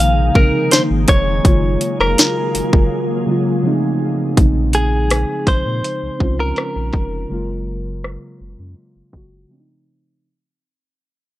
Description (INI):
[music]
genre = contemporary R&B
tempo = 82 BPM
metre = 4/4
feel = straight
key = Bb minor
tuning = A4 = 440 Hz
[part]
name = direct-recorded clean electric guitar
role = melody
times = 0.0-9.5 s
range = Ab4 to F5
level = -20 LUFS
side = equal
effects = none
[part]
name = muted felt-like synth keys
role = accompaniment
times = 0.0-10.3 s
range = C3 to Gb4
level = -21 LUFS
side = right 1 dB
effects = chorus
[part]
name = glassy FM pad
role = sustained chords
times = 0.0-4.4 s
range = Eb3 to Ab4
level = -24 LUFS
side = left 1 dB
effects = ensemble chorus, built-in reverb
[part]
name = warm sub bass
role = bass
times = 0.0-9.5 s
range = F1 to Bb2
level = -20 LUFS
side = equal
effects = none
[part]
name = trap drum kit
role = drums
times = 0.0-9.3 s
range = hi-hat, kick drum, rim click, snare drum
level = -13 LUFS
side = equal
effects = overdrive
[sound]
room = little or no reverb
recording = dry, gritty hardware recording, low-pass filter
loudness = -14 LUFS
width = side -15 dB against mid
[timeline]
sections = 0.0-4.4 A section; 4.4-10.2 B section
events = break 2.9-4.4, 9.5-10.2; fade-out 4.4-10.2; filter sweep 4.4-10.2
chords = 0.0 Bbm11; 1.4 Gbmaj9; 3.6 F7b13; 4.4 Bbm11; 7.3 Gbmaj9; 9.5 F7b13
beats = 0.72 | 1.45 2.18 2.91 3.64 | 4.37 5.11 5.84 6.57 | 7.30 8.03 8.76 9.50